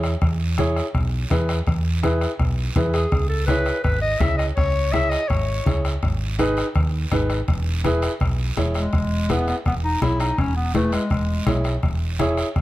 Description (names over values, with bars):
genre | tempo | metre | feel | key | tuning
latin, cumbia | 165 BPM | 4/4 | straight | E major | A4 = 440 Hz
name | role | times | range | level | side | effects
warm upright piano | accompaniment | 0.0-12.5 s | D#4 to C#5 | -26 LUFS | right 1 dB | none
hollow-body short-scale fingered electric bass | bass | 0.0-12.6 s | E1 to E2 | -23 LUFS | right 1 dB | none
bombo | percussion | 0.0-12.6 s | none | -25 LUFS | left 1 dB | none
guiro | percussion | 0.0-12.6 s | none | -36 LUFS | right 5 dB | none
congas | percussion | 0.2-12.6 s | none | -27 LUFS | left 3 dB | none
clear clarinet | melody | 2.9-5.8, 8.8-11.6 s | G#3 to E5 | -24 LUFS | left 1 dB | none
room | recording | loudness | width
little or no reverb | close, detailed microphones | -19 LUFS | side -16 dB against mid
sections
0.0-8.9 A section; 8.9-12.6 B section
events
none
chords
0.0 E; 3.1 C#m; 6.0 G#m; 7.5 E6